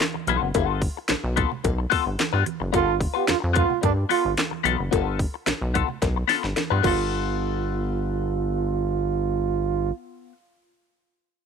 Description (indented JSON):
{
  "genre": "funk",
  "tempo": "110 BPM",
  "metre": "4/4",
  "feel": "straight",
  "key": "G mixolydian",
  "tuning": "A4 = 441 Hz",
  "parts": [
    { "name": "garage drum kit", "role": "drums", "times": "0.0-7.0 s", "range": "crash cymbal, handclaps, hi-hat, kick drum, snare drum", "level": "-26 LUFS", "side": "equal", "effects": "overdrive" },
    { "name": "congas", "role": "percussion", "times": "0.0-7.4 s", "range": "none", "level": "-34 LUFS", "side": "right 13 dB", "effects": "none" },
    { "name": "cowbell", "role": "percussion", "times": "0.0-7.3 s", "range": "none", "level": "-33 LUFS", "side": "left 16 dB", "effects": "none" },
    { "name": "clean electric guitar", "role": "accompaniment", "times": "0.1-10.4 s", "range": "B3 to B4", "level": "-26 LUFS", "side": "left 18 dB", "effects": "wah" },
    { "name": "rubbery square bass", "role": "bass", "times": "0.3-9.9 s", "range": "F#1 to G2", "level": "-26 LUFS", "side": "equal", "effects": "none" },
    { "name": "breathy trombone", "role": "second line", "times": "2.7-9.9 s", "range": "D4 to G4", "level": "-26 LUFS", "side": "right 15 dB", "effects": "none" }
  ],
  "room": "small room ambience",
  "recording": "1960s-style stereo with parts hard left and right",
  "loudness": "-21 LUFS",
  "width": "side -6 dB against mid",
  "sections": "0.0-7.1 A section; 7.1-11.5 B section",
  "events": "drum fill 6.0-7.1",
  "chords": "0.0 G9"
}